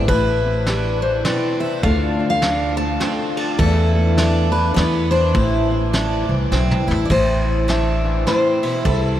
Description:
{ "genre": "acoustic folk duo or small band", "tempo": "103 BPM", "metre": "3/4", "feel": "swing 62% on 8ths", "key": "A minor", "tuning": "A4 = 441 Hz", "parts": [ { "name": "fingerpicked old ladder-braced acoustic guitar", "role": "accompaniment", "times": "0.0-9.2 s", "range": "E2 to A4", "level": "-23 LUFS", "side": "left 1 dB", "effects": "analog chorus" }, { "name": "picked plugged-in twelve-string acoustic guitar", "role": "arpeggios", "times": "0.0-9.2 s", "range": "B3 to E4", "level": "-26 LUFS", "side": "right 4 dB", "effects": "wide subtle chorus, diffuse ambient delay" }, { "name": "upright bass", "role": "bass", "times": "0.0-9.2 s", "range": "A1 to E2", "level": "-20 LUFS", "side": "equal", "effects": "none" }, { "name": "picked steel-string acoustic guitar", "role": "melody", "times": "0.1-9.2 s", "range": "A4 to A5", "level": "-22 LUFS", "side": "left 2 dB", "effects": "diffuse ambient delay" }, { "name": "soft brush drum kit", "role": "drums", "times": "0.1-9.0 s", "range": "crash cymbal, kick drum, ride cymbal, snare drum, toms", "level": "-25 LUFS", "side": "equal", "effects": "none" } ], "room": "moderate huge ambient reverb, RT60 8.3 s", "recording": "dreamy mix soaked in reverb", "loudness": "-16 LUFS", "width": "side -12 dB against mid", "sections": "0.0-7.1 A section; 7.1-9.2 B section", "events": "drum fill 6.5-7.1; steel-string acoustic guitar solo 7.1-9.2", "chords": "0.1 Am7; 1.8 Dm; 3.6 E7sus4; 4.8 E5; 5.3 Am" }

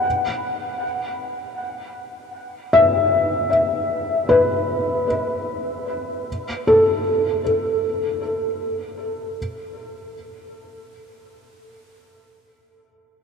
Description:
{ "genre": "ambient", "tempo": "free time", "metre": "none", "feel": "none", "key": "unclear", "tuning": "A4 = 441 Hz", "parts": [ { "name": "felt-muted upright piano", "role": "solo", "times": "0.0-9.4 s", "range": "A4 to E5", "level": "-19 LUFS", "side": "left 1 dB", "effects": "diffuse ambient delay" } ], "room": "wet huge ambient reverb, RT60 7.0 s", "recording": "dark, warm production", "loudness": "-19 LUFS", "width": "side -6 dB against mid", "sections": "0.0-6.3 A section; 6.3-13.2 B section", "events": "none", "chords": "0.1 E5; 6.3 N.C." }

